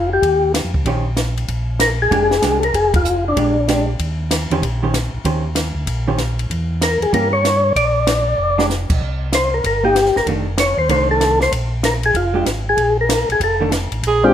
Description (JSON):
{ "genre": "soul jazz organ trio", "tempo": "191 BPM", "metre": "4/4", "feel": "swing 64% on 8ths", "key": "Bb mixolydian", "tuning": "A4 = 442 Hz", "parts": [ { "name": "percussive tonewheel organ", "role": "melody", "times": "0.0-3.9, 6.8-14.3 s", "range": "Ab3 to D5", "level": "-16 LUFS", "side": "left 2 dB", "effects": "slow rotary speaker" }, { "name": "mellow tonewheel organ", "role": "bass", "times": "0.0-14.3 s", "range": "F1 to G2", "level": "-21 LUFS", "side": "equal", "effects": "chorus vibrato, slow rotary speaker" }, { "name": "compact cocktail drum kit", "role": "drums", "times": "0.2-14.1 s", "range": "crash cymbal, hi-hat, kick drum, ride cymbal, snare drum", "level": "-22 LUFS", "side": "equal", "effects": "none" }, { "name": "hollow-body jazz guitar", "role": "accompaniment", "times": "0.9-13.7 s", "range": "Eb3 to C5", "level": "-22 LUFS", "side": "right 4 dB", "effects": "none" }, { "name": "clear alto saxophone", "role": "melody", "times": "14.1-14.3 s", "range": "G4 to Ab4", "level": "-15 LUFS", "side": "right 4 dB", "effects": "none" } ], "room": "moderate large studio reverb, RT60 1.1 s", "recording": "none", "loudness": "-15 LUFS", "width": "side -10 dB against mid", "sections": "0.0-14.0 A section", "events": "band accent 2.9; drum fill 8.4-8.7", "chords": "0.2 Eb13; 1.5 Bb13; 2.7 Fm6; 3.4 Bb6; 4.0 Eb6; 6.5 Edim7; 7.8 Bb; 9.0 C7(no3); 10.3 F6; 11.5 Bb5; 13.4 F6" }